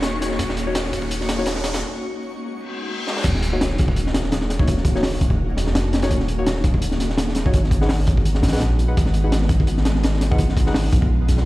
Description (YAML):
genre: drum and bass, jungle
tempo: 168 BPM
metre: 4/4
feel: swing 55% on 16ths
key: Eb minor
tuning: A4 = 440 Hz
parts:
  - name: ethereal airy pad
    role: sustained chords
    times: 0.0-11.5 s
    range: Ab3 to Gb4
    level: -28 LUFS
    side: equal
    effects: ensemble chorus, built-in reverb
  - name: long sustained 808-style bass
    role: bass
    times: 0.0-11.5 s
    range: Eb1 to C2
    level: -21 LUFS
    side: equal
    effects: tube saturation
  - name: crunchy breakbeat drum kit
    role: drums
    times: 0.0-11.5 s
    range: crash cymbal, hi-hat, kick drum, snare drum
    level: -21 LUFS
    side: equal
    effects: high-pass filter on kick, high-pass filter on hats, high-pass filter on cymbals, high-pass filter on snare, high-pass filter on room
  - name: riser, reverse cymbal and sub drop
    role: sound effects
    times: 0.0-4.7 s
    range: none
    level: -30 LUFS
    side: equal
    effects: none
  - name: twinkling granular texture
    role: texture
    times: 0.0-1.8 s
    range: Db5 to Db6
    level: -36 LUFS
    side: equal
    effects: built-in reverb
  - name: deep mellow chord stab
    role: stabs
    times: 0.2-10.7 s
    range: Bb3 to Gb5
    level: -29 LUFS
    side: left 2 dB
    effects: chorus, dub echo
room: small room ambience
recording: played on a big sound system in a bare room, large studio reverb, vinyl crackle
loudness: -18 LUFS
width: side -18 dB against mid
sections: 0.0-3.2 A section; 3.2-11.5 B section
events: build-up 0.0-3.2; riser 0.0-1.8; break 1.8-3.2; reverse cymbal 2.7-3.2; drum fill 3.1; drop 3.2-11.5; impact 3.2-4.7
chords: 0.0 Ebm7; 1.8 Abm7; 3.2 Ebm7; 7.5 Abm7